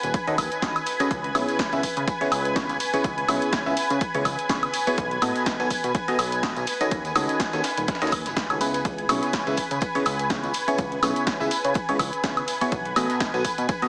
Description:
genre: piano house.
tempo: 124 BPM.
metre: 4/4.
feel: swing 56% on 16ths.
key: C# minor.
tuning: A4 = 442 Hz.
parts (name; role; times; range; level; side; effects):
analog string pad; sustained chords; 0.0-13.9 s; B4 to G#5; -27 LUFS; equal; ensemble chorus, sidechain pumping.
fat analog bass; bass; 0.0-13.7 s; D#1 to C#3; -30 LUFS; equal; sidechain pumping.
punchy analog drum machine; drums; 0.0-13.9 s; hi-hat, snare drum, woodblock; -27 LUFS; equal; overdrive.
tambourine; percussion; 0.0-13.8 s; none; -40 LUFS; equal; none.
breakbeat sampler-style drum kit; drums; 0.1-13.9 s; ride cymbal, snare drum; -38 LUFS; equal; none.
electronic kick drum; drums; 0.1-13.8 s; none; -30 LUFS; equal; overdrive.
barking FM electric piano; riff; 0.3-13.9 s; B2 to G#5; -26 LUFS; equal; phaser, sidechain pumping, tape echo.
room: moderate digital room reverb, RT60 1.0 s, digital ambience.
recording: heavily compressed radio sound, multiband compression, small speaker sound.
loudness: -22 LUFS.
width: side -34 dB against mid.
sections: 0.0-13.9 A section.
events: none.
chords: 0.0 D#m7b5; 1.1 C#m7; 5.0 B7; 6.7 D#m7b5; 8.8 C#m7; 12.7 B7.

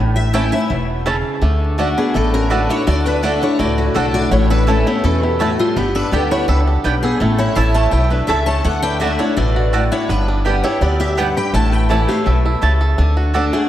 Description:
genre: bluegrass.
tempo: 166 BPM.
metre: 4/4.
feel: straight.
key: unclear.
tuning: A4 = 440 Hz.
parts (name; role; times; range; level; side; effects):
picked steel-string acoustic guitar; accompaniment; 0.0-13.7 s; F#2 to G4; -20 LUFS; left 1 dB; lush chorus.
upright bass; bass; 0.0-13.5 s; E1 to E2; -17 LUFS; equal; none.
picked steel-string acoustic guitar; melody; 0.2-13.7 s; F4 to A5; -23 LUFS; left 1 dB; ensemble chorus, diffuse ambient delay.
bluegrass banjo; melody; 0.3-13.7 s; G3 to A4; -25 LUFS; right 3 dB; diffuse ambient delay.
mandolin; stabs; 0.3-13.4 s; A3 to A5; -25 LUFS; right 4 dB; diffuse ambient delay.
lap resonator guitar; second line; 2.0-12.9 s; G3 to C#5; -23 LUFS; left 2 dB; none.
room: moderate church reverb, RT60 3.0 s.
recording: dreamy mix soaked in reverb, vinyl crackle.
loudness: -14 LUFS.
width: side -12 dB against mid.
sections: 0.0-1.4 A section; 1.4-13.0 B section.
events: none.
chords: 0.0 A; 1.4 D; 4.3 A; 5.8 G; 7.2 A; 8.7 D; 10.1 G; 11.5 A; 13.0 D.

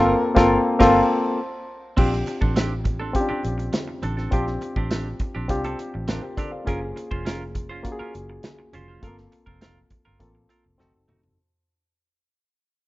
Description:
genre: lush 1970s-style soul.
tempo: 102 BPM.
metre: 4/4.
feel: straight.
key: Bb major.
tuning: A4 = 442 Hz.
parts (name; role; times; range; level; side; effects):
breathy tenor saxophone; melody; 0.0-0.5 s; Bb4; -30 LUFS; equal; none.
barky reed electric piano; accompaniment; 0.0-11.4 s; A3 to F5; -22 LUFS; left 1 dB; overdrive, spring reverb.
semi-hollow electric guitar; riff; 0.0-11.3 s; A3 to C5; -32 LUFS; right 3 dB; none.
vintage muted fingered electric bass; bass; 0.0-11.4 s; F1 to C2; -28 LUFS; equal; none.
modern studio drum kit; drums; 0.4-11.4 s; crash cymbal, hi-hat, kick drum, snare drum, toms; -25 LUFS; equal; none.
congas; percussion; 2.0-11.2 s; none; -41 LUFS; right 3 dB; none.
room: small room ambience.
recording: rough home demo mix, nothing above 7.7 kHz.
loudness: -20 LUFS.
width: side -18 dB against mid.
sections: 0.0-2.0 A section; 2.0-11.4 B section.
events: band accent 0.0-2.0; fade-out 2.0-11.4; drum fill 10.8-11.4.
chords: 0.0 Gm11; 1.4 N.C.; 2.0 Bb69; 6.7 Gbmaj7; 9.0 Gm11; 10.8 F7b9.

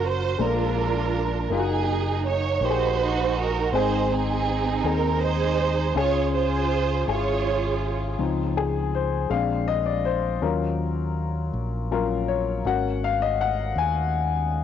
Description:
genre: slow gospel.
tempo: 54 BPM (dotted quarters).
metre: 6/8.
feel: straight.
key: Db major.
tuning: A4 = 439 Hz.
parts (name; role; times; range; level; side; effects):
warm studio string section; melody; 0.0-8.2 s; C4 to Db5; -24 LUFS; right 7 dB; tape echo.
warm upright piano; accompaniment; 0.0-14.6 s; Ab2 to Ab5; -26 LUFS; left 8 dB; cassette tape.
fingered electric bass; bass; 0.0-14.6 s; Gb1 to Eb2; -27 LUFS; equal; none.
room: light reverb, small room ambience.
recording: home recording on cassette, nothing above 7.6 kHz.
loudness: -22 LUFS.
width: side -9 dB against mid.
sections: 0.0-8.2 A section; 8.2-14.6 B section.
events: upright piano solo 8.2-14.6.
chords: 0.4 Bb7; 1.5 Ebm/Gb; 3.7 Ab; 6.0 Db; 8.2 Dbmaj7; 9.3 Bb7; 10.4 Ebm9; 12.7 Ab7sus4.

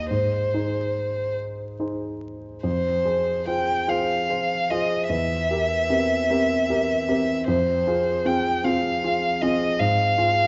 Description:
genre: classical, romantic duo for violin and grand piano.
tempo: 45-53 BPM (dotted quarters).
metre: 6/8.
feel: rubato.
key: F minor.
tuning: A4 = 440 Hz.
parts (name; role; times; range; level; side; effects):
rich violin; melody; 0.0-10.5 s; C5 to G5; -25 LUFS; equal; none.
clear concert grand piano; accompaniment; 0.0-10.5 s; Eb2 to Db5; -27 LUFS; equal; none.
room: moderate recital hall reverb, RT60 1.5 s.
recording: vinyl crackle, nothing above 7.5 kHz.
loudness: -23 LUFS.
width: mono.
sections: 0.0-2.6 A section; 2.6-10.5 B section.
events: none.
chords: 0.1 Ab; 2.6 Fm; 5.1 C7/E; 7.5 Fm; 9.8 Fm/Ab.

